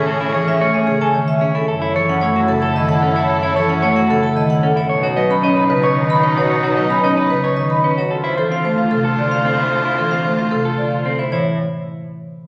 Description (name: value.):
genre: classical, minimalist pattern music.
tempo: 112 BPM.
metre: 3/4.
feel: straight.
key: A lydian.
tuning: A4 = 440 Hz.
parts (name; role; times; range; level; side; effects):
vibraphone with medium hard mallets; melody; 0.0-11.6 s; G#4 to C#6; -22 LUFS; equal; none.
mellow oboe; second line; 0.0-11.1 s; C#4 to F4; -26 LUFS; equal; none.
rich chamber string section; sustained chords; 0.0-11.2 s; C#4 to C5; -29 LUFS; equal; none.
clean electric guitar; arpeggios; 0.0-11.6 s; C4 to D#5; -25 LUFS; equal; none.
rich cello; bass; 0.0-11.6 s; D2 to B2; -30 LUFS; equal; none.
marimba with soft mallets; accompaniment; 0.3-11.6 s; C3 to C#4; -22 LUFS; equal; none.
room: wet recital hall reverb, RT60 1.6 s.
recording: none.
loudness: -17 LUFS.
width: mono.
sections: 0.0-11.3 A section; 11.3-12.5 B section.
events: none.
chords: 0.0 Amaj7; 1.7 F#m7; 4.9 B; 8.1 Dm7; 11.3 A.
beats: | 0.07 0.61 1.14 | 1.68 2.21 2.75 | 3.29 3.82 4.36 | 4.89 5.43 5.96 | 6.50 7.04 7.57 | 8.11 8.64 9.18 | 9.71 10.25 10.79 | 11.32.